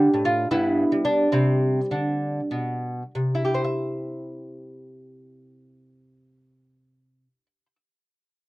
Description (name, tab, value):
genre	classical, baroque-style dance for lute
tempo	62-80 BPM (dotted quarters)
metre	6/8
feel	rubato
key	C major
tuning	A4 = 439 Hz
part	lute	solo	0.0-7.8 s	G2 to E5	-21 LUFS	equal	none
room	light reverb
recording	dry, close 1970s-style studio recording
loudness	-21 LUFS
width	side -19 dB against mid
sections	0.0-3.1 A section; 3.1-6.9 B section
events	slowing down 0.0-3.1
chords	0.0 D5; 0.5 G; 1.3 C5; 3.1 C